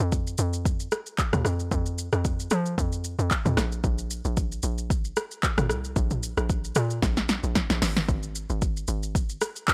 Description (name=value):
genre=amapiano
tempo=113 BPM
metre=4/4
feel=swing 55% on 16ths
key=unclear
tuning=A4 = 439 Hz
part: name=hollow log drum bass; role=bass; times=0.0-9.4 s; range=Ab1 to F3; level=-30 LUFS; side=equal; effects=none
part: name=deep house drum kit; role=drums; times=0.0-9.7 s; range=handclaps, hi-hat, kick drum, rim click, shaker, snare drum, toms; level=-28 LUFS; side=equal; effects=overdrive
room=little or no reverb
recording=dry, gritty hardware recording, transformer saturation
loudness=-27 LUFS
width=mono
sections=0.0-9.7 A section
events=drum fill 7.0-8.1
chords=none